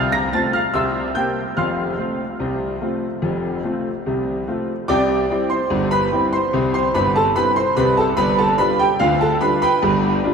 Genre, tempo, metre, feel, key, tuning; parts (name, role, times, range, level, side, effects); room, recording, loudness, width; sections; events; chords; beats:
ragtime piano; 73 BPM; 2/4; straight; F major, C major from 4.9 s; A4 = 440 Hz
clear grand piano; solo; 0.0-10.3 s; F1 to Bb6; -17 LUFS; equal; analog chorus, tape echo
wet cathedral reverb, RT60 5.0 s; dreamy mix soaked in reverb; -17 LUFS; side -6 dB against mid
0.0-4.9 A section; 4.9-10.3 B section
0.0 F/C; 0.7 C7; 1.6 F; 4.9 C; 8.2 G7
0.74 | 1.57 2.40 | 3.23 4.07 | 4.90 5.72 | 6.54 7.36 | 8.19 9.01 | 9.82